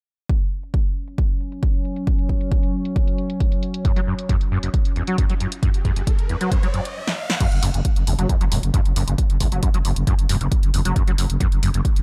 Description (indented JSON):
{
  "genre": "driving peak-time techno",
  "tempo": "135 BPM",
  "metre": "4/4",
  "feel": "straight",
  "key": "unclear",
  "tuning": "A4 = 440 Hz",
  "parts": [
    { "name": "analog drone", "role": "drone", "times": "1.1-7.0 s", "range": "F#3 to C#4", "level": "-32 LUFS", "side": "equal", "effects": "chorus, sidechain pumping" },
    { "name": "electronic kick drum", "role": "drums", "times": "0.3-11.9 s", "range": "none", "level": "-22 LUFS", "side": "equal", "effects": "none" },
    { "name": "punchy analog drum machine", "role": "drums", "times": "0.3-12.0 s", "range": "crash cymbal, hi-hat, snare drum", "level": "-31 LUFS", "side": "equal", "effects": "sidechain pumping on hats, low-pass filter on hats, low-pass filter on snare, sidechain pumping on cymbals, low-pass filter on cymbals, low-pass filter on room" },
    { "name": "overdriven acid bass", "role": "riff", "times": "3.8-11.8 s", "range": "F#1 to F#3", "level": "-27 LUFS", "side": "equal", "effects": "distortion, ensemble chorus, sidechain pumping, dub echo" },
    { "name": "riser", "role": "sound effects", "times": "5.3-7.4 s", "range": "none", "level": "-35 LUFS", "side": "equal", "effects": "none" },
    { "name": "growling FM bass", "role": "bass", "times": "7.5-12.0 s", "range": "E1 to F#1", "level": "-24 LUFS", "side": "equal", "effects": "sidechain pumping" }
  ],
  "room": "little or no reverb",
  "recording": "none",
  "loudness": "-21 LUFS",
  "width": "mono",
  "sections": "0.3-7.4 A section; 7.4-12.0 B section",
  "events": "riser 5.3-7.4; stop 7.0-7.4; drum fill 7.1-7.4; filter sweep on acid bass 7.4-12.0",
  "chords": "0.3 F#5; 7.4 N.C."
}